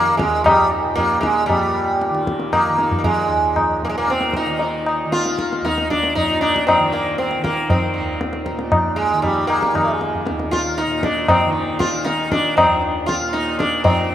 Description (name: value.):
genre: indian classical, Hindustani.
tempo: 116 BPM.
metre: 3/4.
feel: straight.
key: Eb raga bilaval.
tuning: A4 = 440 Hz.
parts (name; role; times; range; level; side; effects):
sitar; melody; 0.0-14.1 s; G3 to F4; -19 LUFS; right 1 dB; tape echo.
tanpura; drone; 0.0-14.1 s; Eb2 to Eb3; -26 LUFS; equal; none.
tabla; percussion; 0.2-14.0 s; none; -20 LUFS; left 1 dB; none.
room: wet lush hall reverb, RT60 2.8 s.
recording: rough home demo mix.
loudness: -16 LUFS.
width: side -11 dB against mid.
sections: 0.0-1.5 A section; 1.5-13.9 B section.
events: none.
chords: none.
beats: 0.46 0.98 | 1.50 2.02 2.54 | 3.05 3.57 4.09 | 4.61 5.12 5.64 | 6.16 6.67 7.19 | 7.70 8.22 8.73 | 9.25 9.76 10.27 | 10.79 11.30 11.81 | 12.32 12.83 13.34 | 13.85.